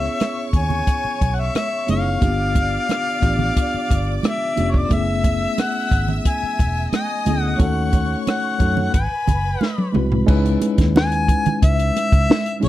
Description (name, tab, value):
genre	lush 1970s-style soul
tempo	89 BPM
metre	4/4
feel	straight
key	unclear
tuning	A4 = 441 Hz
part	mellow harmonica	melody	0.0-12.7 s	C#5 to G#5	-23 LUFS	left 3 dB	slapback echo
part	clear symphonic string section	second line	0.0-10.3 s	B4 to E6	-31 LUFS	right 1 dB	none
part	tine electric piano	accompaniment	0.0-12.7 s	G#3 to B4	-24 LUFS	left 1 dB	overdrive, fast stereo tremolo
part	vintage muted fingered electric bass	bass	0.0-12.7 s	E1 to F#2	-22 LUFS	equal	none
part	compact cocktail drum kit	drums	0.0-12.7 s	crash cymbal, hi-hat, kick drum, rim click, snare drum, toms	-18 LUFS	equal	none
part	congas	percussion	0.2-12.7 s	none	-25 LUFS	right 6 dB	none
room	little or no reverb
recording	dry, close 1970s-style studio recording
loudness	-17 LUFS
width	side -14 dB against mid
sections	0.0-10.3 A section; 10.3-12.7 B section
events	drum fill 9.6-10.3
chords	0.0 C#m9; 2.2 G7#11; 4.9 F#m11; 7.6 D#m7b5; 8.9 G#7alt; 10.3 C#m7